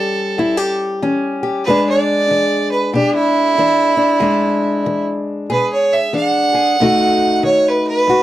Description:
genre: acoustic country blues, solo or duo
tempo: 94 BPM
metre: 4/4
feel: swing 62% on 8ths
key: E mixolydian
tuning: A4 = 440 Hz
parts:
  - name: rich fiddle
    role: melody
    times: 0.0-8.2 s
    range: E4 to F#5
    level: -15 LUFS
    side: right 3 dB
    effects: none
  - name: fingerpicked old ladder-braced acoustic guitar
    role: accompaniment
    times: 0.0-8.2 s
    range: E2 to G#4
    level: -16 LUFS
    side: left 2 dB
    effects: none
room: little or no reverb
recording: dry, close 1970s-style studio recording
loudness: -13 LUFS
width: side -14 dB against mid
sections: 0.0-8.2 A section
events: fiddle solo 0.0-8.2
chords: 0.0 A7; 1.7 E7; 6.8 B7

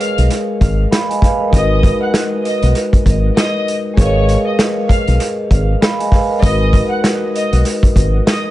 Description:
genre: hip hop, boom-bap hip-hop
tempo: 98 BPM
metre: 4/4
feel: swing 60% on 16ths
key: G# dorian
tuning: A4 = 440 Hz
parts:
  - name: dark studio violin section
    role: melody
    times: 0.0-8.5 s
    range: C#5 to F#6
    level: -22 LUFS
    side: left 1 dB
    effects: high-pass filter, low-pass filter, analog delay
  - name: vibraphone with medium mallets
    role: accompaniment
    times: 0.0-8.5 s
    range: G#3 to B5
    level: -18 LUFS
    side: equal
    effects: cassette tape, high-pass filter, low-pass filter, analog delay
  - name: vintage drum kit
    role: drums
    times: 0.0-8.4 s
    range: hi-hat, kick drum, snare drum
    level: -15 LUFS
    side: equal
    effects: analog delay
  - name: fingered electric bass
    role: bass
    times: 0.2-8.2 s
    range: G#1 to B1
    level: -14 LUFS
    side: equal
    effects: none
room: studio ambience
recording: echo-heavy mix, nothing above 10.8 kHz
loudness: -12 LUFS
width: side -15 dB against mid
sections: 0.0-8.5 A section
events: none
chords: 0.0 C#13 (rootless); 1.5 G#m7; 4.0 C#13/G#; 6.4 G#m7

